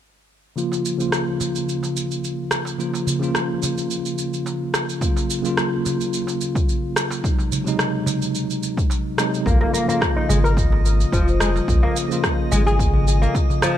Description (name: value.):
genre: organic downtempo.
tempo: 108 BPM.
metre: 4/4.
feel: swing 54% on 16ths.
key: Bb minor.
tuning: A4 = 438 Hz.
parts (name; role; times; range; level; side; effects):
bell-like tine electric piano; accompaniment; 0.6-13.8 s; C3 to F4; -23 LUFS; equal; fast stereo tremolo, sidechain pumping, low-pass filter, digital delay.
electronic shaker and rim click; drums; 0.6-13.7 s; none; -25 LUFS; right 1 dB; none.
darbuka; percussion; 0.7-13.7 s; none; -30 LUFS; right 2 dB; none.
electronic kick drum; drums; 5.0-13.5 s; none; -21 LUFS; equal; overdrive.
oud; arpeggios; 9.5-13.8 s; F3 to Bb4; -23 LUFS; left 2 dB; vintage 12-bit sampler grit, low-pass filter, digital delay.
warm sub bass; bass; 9.5-13.3 s; F1 to Bb1; -18 LUFS; equal; tube saturation.
drifting glass-harmonics texture; texture; 9.7-13.8 s; Eb5; -33 LUFS; left 2 dB; chorus, built-in reverb.
room: moderate concert hall reverb, RT60 2.5 s.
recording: none.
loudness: -18 LUFS.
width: side -11 dB against mid.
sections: 0.6-9.5 A section; 9.5-13.8 B section.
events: filter sweep on tine electric piano 0.6-9.5; filter sweep on oud 9.5-13.8.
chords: 0.6 Bbm; 5.0 Gbmaj7; 7.2 Ab7; 9.5 Bbm.